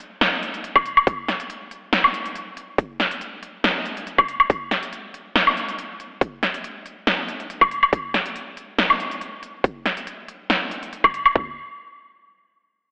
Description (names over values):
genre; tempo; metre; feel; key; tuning
future bass; 140 BPM; 4/4; swing 53% on 16ths, half-time; none; none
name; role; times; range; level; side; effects
big-room dance drum kit; drums; 0.0-11.3 s; hi-hat, snare drum, woodblock; -19 LUFS; equal; overdrive
big-room dance drum kit; drums; 0.8-11.5 s; kick drum, toms; -21 LUFS; equal; overdrive
room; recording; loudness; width
wet lush hall reverb, RT60 1.8 s; dreamy mix soaked in reverb, telephone sound; -19 LUFS; side -27 dB against mid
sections
0.0-11.4 A section; 11.4-12.9 B section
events
drop 0.0-11.4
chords
none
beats
0.21 0.64 | 1.07 1.50 1.93 2.35 | 2.78 3.21 3.64 4.07 | 4.50 4.93 5.36 5.78 | 6.21 6.64 7.07 7.50 | 7.93 8.36 8.78 9.21 | 9.64 10.07 10.50 10.93 | 11.36